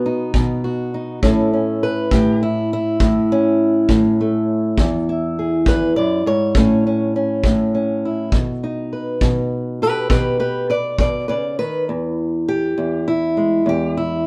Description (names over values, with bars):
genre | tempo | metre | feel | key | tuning
acoustic country blues, solo or duo | 68 BPM (dotted quarters) | 12/8 | straight | E major | A4 = 440 Hz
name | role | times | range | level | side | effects
fingerpicked old ladder-braced acoustic guitar | melody | 0.0-14.3 s | E2 to D5 | -19 LUFS | equal | none
kick drum | drums | 0.3-11.1 s | none | -21 LUFS | equal | none
room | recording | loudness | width
moderate studio reverb, RT60 0.8 s | band playing live in one room | -19 LUFS | mono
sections
0.0-11.9 A section; 11.9-14.3 B section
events
steel-string acoustic guitar solo 11.9-14.3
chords
0.0 B; 1.2 A; 4.8 E; 6.5 A; 8.3 B; 11.9 E